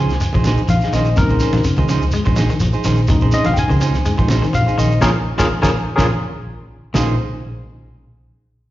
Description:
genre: afrobeat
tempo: 125 BPM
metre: 4/4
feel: straight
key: Bb minor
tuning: A4 = 439 Hz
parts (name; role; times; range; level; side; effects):
- barky tine electric piano; accompaniment; 0.0-7.2 s; F3 to Ab5; -21 LUFS; left 2 dB; overdrive, plate reverb, slapback echo
- electric guitar at the edge of break-up; arpeggios; 0.0-7.1 s; Bb2 to Ab3; -24 LUFS; left 4 dB; plate reverb, slapback echo
- clean electric guitar; stabs; 0.0-7.2 s; Db4 to C5; -24 LUFS; right 6 dB; plate reverb, slapback echo
- fingered electric bass; bass; 0.0-7.2 s; Bb1 to Db2; -17 LUFS; equal; none
- cloth-damped thuddy drum kit; drums; 0.1-7.1 s; crash cymbal, hi-hat, kick drum, snare drum; -22 LUFS; equal; none
- shekere; percussion; 0.1-7.1 s; none; -25 LUFS; right 1 dB; none
- congas; percussion; 0.2-7.1 s; none; -26 LUFS; right 1 dB; none
room: light reverb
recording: live gig heard through the venue's PA, recital hall reverb, nothing above 7.5 kHz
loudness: -14 LUFS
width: side -15 dB against mid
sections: 0.0-6.9 A section; 6.9-8.7 B section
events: tine electric piano solo 0.0-6.9; band accent 5.0-6.9; drum fill 6.5-6.9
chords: 0.0 Bbm11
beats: 0.21 0.69 | 1.17 1.65 2.13 2.61 | 3.09 3.57 4.05 4.53 | 5.01 5.50 5.98 6.46 | 6.95

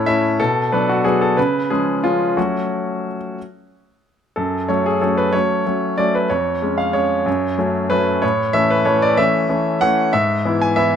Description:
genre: classical-period piano sonatina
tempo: 62 BPM (dotted quarters)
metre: 6/8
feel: straight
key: F# minor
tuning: A4 = 441 Hz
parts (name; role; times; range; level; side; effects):
- bright grand piano; solo; 0.0-11.0 s; E#2 to G#5; -16 LUFS; equal; none
room: light reverb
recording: close, detailed microphones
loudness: -16 LUFS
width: side -8 dB against mid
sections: 0.0-4.4 A section; 4.4-11.0 A section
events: none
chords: 0.4 Bm; 1.4 C#; 2.4 F#m; 6.3 C#/E#; 7.3 F#m; 8.2 A; 10.1 E/G#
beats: | 0.39 1.37 | 2.37 3.37 | 4.37 5.34 | 6.31 7.27 | 8.23 9.18 | 10.13

